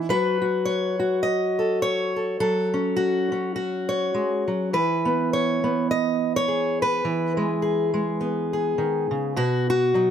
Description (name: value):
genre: folk, solo fingerstyle acoustic guitar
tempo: 104 BPM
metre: 4/4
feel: swing 56% on 8ths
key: unclear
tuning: A4 = 440 Hz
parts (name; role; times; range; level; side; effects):
- fingerpicked steel-string acoustic guitar; solo; 0.0-10.1 s; B2 to D#5; -21 LUFS; equal; none
room: light reverb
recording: close, detailed microphones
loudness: -21 LUFS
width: side -8 dB against mid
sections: 0.0-9.4 A section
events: none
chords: 0.1 F#m; 4.7 E; 9.4 B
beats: | 0.10 0.68 1.26 1.84 | 2.42 3.00 3.58 4.15 | 4.73 5.31 5.89 6.47 | 7.05 7.63 8.21 8.79 | 9.37 9.95